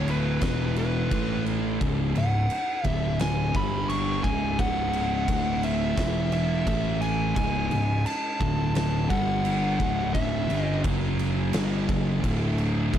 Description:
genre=stoner and doom metal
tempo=86 BPM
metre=4/4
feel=straight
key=unclear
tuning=A4 = 441 Hz
part: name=fuzz lead guitar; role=melody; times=0.0-10.8 s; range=B4 to C#6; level=-30 LUFS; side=equal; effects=distortion, slapback echo
part: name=thick fuzz guitar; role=riff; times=0.0-13.0 s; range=C#2 to A3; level=-29 LUFS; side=left 8 dB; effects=distortion
part: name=thick fuzz guitar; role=riff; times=0.0-13.0 s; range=C#2 to A3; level=-29 LUFS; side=right 6 dB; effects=distortion
part: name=fuzz picked electric bass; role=bass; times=0.0-13.0 s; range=C#1 to A1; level=-31 LUFS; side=equal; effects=overdrive
part: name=oversized low-tuned drum kit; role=drums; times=0.1-13.0 s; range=crash cymbal, kick drum, snare drum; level=-30 LUFS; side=equal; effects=none
part: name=mellow tonewheel organ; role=sustained chords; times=7.4-13.0 s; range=F#3 to G#5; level=-39 LUFS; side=right 1 dB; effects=none
room=light reverb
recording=dark, warm production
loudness=-23 LUFS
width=side -10 dB against mid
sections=0.0-13.0 A section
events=none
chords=0.4 E5; 1.1 A5; 1.8 C#5; 2.8 D5; 3.5 G5; 4.2 C#5; 5.3 D5; 6.0 E5; 6.7 A5; 7.4 C#5; 8.4 D5; 9.1 G5; 9.8 C#m; 10.8 F#5; 11.5 C#5; 12.2 D5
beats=0.41 1.11 | 1.80 2.50 3.20 3.89 | 4.59 5.28 5.98 6.67 | 7.37 8.06 8.76 9.46 | 10.15 10.85 11.54 12.24 | 12.93

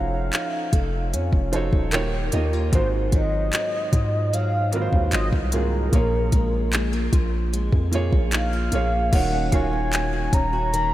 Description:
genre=contemporary R&B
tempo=75 BPM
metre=4/4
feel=straight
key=Bb minor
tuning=A4 = 437 Hz
part: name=mellow horn-like synth lead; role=melody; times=0.0-10.9 s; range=Bb4 to Bb5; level=-27 LUFS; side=equal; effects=chorus, tape echo
part: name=clear concert grand piano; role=accompaniment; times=0.0-10.9 s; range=Ab2 to A5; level=-28 LUFS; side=right 3 dB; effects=none
part: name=flamenco guitar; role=arpeggios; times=0.0-10.9 s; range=Ab2 to A4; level=-31 LUFS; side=left 2 dB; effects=analog chorus, tape echo
part: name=long sustained 808-style bass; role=bass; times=0.0-10.9 s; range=Eb1 to Ab2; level=-24 LUFS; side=equal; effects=none
part: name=smooth R&B drum kit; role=drums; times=0.3-10.9 s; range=crash cymbal, handclaps, hi-hat, kick drum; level=-23 LUFS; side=equal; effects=none
part: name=glassy wavetable pluck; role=texture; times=9.5-10.9 s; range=F5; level=-41 LUFS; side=equal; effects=none
room=light reverb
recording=none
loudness=-20 LUFS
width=side -14 dB against mid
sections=0.0-9.1 A section; 9.1-10.9 B section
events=grand piano fill 1.1-2.7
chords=0.0 F7b9b13; 1.9 Eb9; 2.7 Ab13; 5.9 Bbm7; 9.1 Ebm7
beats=0.33 1.13 1.93 | 2.73 3.53 4.33 5.13 | 5.93 6.73 7.53 8.33 | 9.13 9.93 10.73

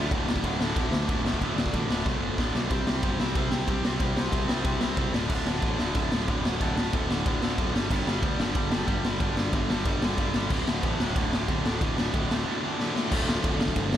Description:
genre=punk rock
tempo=185 BPM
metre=4/4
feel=straight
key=unclear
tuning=A4 = 440 Hz
part: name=sludgy distorted guitar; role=riff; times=0.0-14.0 s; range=D2 to F4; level=-28 LUFS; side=equal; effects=overdrive
part: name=picked electric bass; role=bass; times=0.0-14.0 s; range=D1 to D2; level=-32 LUFS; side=equal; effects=none
part: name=raw garage drum kit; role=drums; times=0.1-14.0 s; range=crash cymbal, kick drum, ride cymbal, snare drum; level=-27 LUFS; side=equal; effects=none
room=little or no reverb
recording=none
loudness=-24 LUFS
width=side -11 dB against mid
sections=0.1-2.7 A section; 2.7-13.1 B section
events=drum fill 2.1-2.7, 12.8-13.1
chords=0.1 D5; 2.7 C5; 5.1 D5; 7.7 G5; 10.5 D5; 13.1 Dm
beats=| 0.11 0.43 0.76 1.08 | 1.41 1.73 2.06 2.38 | 2.71 3.03 3.36 3.68 | 4.01 4.33 4.66 4.98 | 5.31 5.63 5.96 6.28 | 6.61 6.93 7.26 7.58 | 7.91 8.23 8.56 8.88 | 9.21 9.53 9.86 10.19 | 10.51 10.84 11.16 11.49 | 11.81 12.14 12.46 12.79 | 13.11 13.44 13.76

